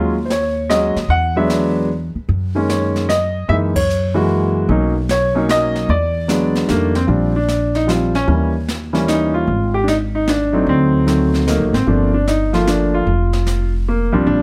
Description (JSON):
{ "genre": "jazz piano trio", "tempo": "150 BPM", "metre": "3/4", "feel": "swing 66% on 8ths", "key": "F# major, Bb major from 7.1 s", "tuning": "A4 = 439 Hz", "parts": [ { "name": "warm grand piano", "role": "melody", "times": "0.0-14.4 s", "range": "D#3 to F#5", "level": "-18 LUFS", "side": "equal", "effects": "none" }, { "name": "upright bass", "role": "bass", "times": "0.0-14.4 s", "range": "F1 to F#2", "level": "-22 LUFS", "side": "equal", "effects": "none" }, { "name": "jazz brush drum kit", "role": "drums", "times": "0.3-14.4 s", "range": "brushed snare drum, crash cymbal, hi-hat, kick drum, snare drum", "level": "-28 LUFS", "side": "equal", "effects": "none" } ], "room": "light reverb", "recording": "none", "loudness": "-17 LUFS", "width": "mono", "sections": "0.0-7.1 A section; 7.1-14.4 B section", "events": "band accent 3.7", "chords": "0.0 D#m11; 1.1 E9; 2.3 F#69; 4.7 Bmaj9; 5.9 E9; 6.7 F13; 7.1 Bb69; 8.3 Eb7b9; 9.5 Ab5; 10.7 D7b9; 11.9 Gm9; 13.1 N.C.", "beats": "0.30 0.70 | 1.10 1.50 1.90 | 2.29 2.69 3.09 | 3.49 3.89 4.29 | 4.69 5.09 5.49 | 5.89 6.29 6.69 | 7.08 7.48 7.88 | 8.28 8.68 9.08 | 9.48 9.88 10.28 | 10.68 11.08 11.48 | 11.88 12.28 12.68 | 13.07 13.47 13.87 | 14.27" }